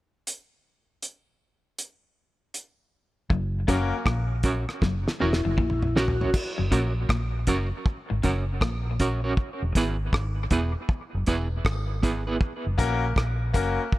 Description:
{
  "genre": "dub reggae",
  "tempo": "79 BPM",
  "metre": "4/4",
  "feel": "swing 64% on 16ths",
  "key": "F# mixolydian",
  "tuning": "A4 = 440 Hz",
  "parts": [
    { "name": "cloth-damped thuddy drum kit", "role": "drums", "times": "0.3-14.0 s", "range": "crash cymbal, hi-hat, kick drum, rim click, snare drum, toms", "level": "-26 LUFS", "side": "equal", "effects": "none" },
    { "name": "electric guitar at the edge of break-up", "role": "riff", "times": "3.3-8.8 s", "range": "E2 to A#2", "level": "-35 LUFS", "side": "left 4 dB", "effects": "dub echo" },
    { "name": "vintage muted fingered electric bass", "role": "bass", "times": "3.3-13.8 s", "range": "E1 to A#1", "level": "-27 LUFS", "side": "equal", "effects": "none" },
    { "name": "electric guitar at the edge of break-up", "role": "accompaniment", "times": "3.7-12.4 s", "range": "B3 to C#5", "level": "-30 LUFS", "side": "right 3 dB", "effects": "tremolo, dub echo" },
    { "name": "bright grand piano", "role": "stabs", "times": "3.7-3.9, 12.8-13.8 s", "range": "A#3 to A#4", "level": "-29 LUFS", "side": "left 5 dB", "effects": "dub echo" },
    { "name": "mellow tonewheel organ", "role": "melody", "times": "5.2-6.4 s", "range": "E4 to F#4", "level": "-30 LUFS", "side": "left 2 dB", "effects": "chorus vibrato, slow rotary speaker, dub echo" }
  ],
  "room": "small room ambience",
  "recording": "none",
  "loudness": "-23 LUFS",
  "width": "side -17 dB against mid",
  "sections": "0.3-3.3 A section; 3.3-6.3 B section; 6.3-14.0 C section",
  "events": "drum fill 4.8-6.3",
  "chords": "0.3 N.C.; 3.3 F#; 9.4 E; 12.4 F#",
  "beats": "| 0.27 1.03 1.79 2.55 | 3.31 4.07 4.83 5.58 | 6.34 7.10 7.86 8.62 | 9.38 10.13 10.89 11.65 | 12.41 13.17 13.93"
}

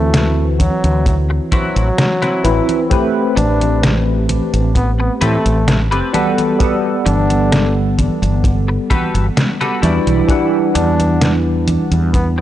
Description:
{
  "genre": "vaporwave",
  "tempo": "65 BPM",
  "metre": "4/4",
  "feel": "straight",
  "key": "G major",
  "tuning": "A4 = 440 Hz",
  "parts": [
    { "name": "warm flugelhorn", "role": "melody", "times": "0.0-12.4 s", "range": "F#3 to D4", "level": "-22 LUFS", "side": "equal", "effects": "tape echo" },
    { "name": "tine electric piano", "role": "accompaniment", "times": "0.0-12.4 s", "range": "E3 to F#5", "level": "-18 LUFS", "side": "equal", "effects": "medium stereo tremolo, analog chorus, tape echo" },
    { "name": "mellow fretless electric bass", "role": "bass", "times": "0.0-12.4 s", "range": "G1 to A2", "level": "-16 LUFS", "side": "equal", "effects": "none" },
    { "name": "detuned 8-bit digital drum machine", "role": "drums", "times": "0.1-12.3 s", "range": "congas, hi-hat, snare drum", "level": "-20 LUFS", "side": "equal", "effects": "studio reverb" },
    { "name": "kick drum", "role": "drums", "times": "0.6-12.3 s", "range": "none", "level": "-16 LUFS", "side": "equal", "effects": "studio reverb" },
    { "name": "semi-hollow electric guitar", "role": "riff", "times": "1.3-12.4 s", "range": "C4 to D5", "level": "-22 LUFS", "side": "left 2 dB", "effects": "analog chorus, tape echo" }
  ],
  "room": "small room ambience",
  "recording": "dry, gritty hardware recording, nothing above 10.8 kHz",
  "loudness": "-12 LUFS",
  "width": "side -12 dB against mid",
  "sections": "0.0-12.4 A section",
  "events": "none",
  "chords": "0.0 D13; 2.9 Am9; 6.1 Gmaj9; 9.8 Em9",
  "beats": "0.14 1.06 1.99 | 2.91 3.83 4.75 5.68 | 6.60 7.52 8.45 9.37 | 10.29 11.22 12.14"
}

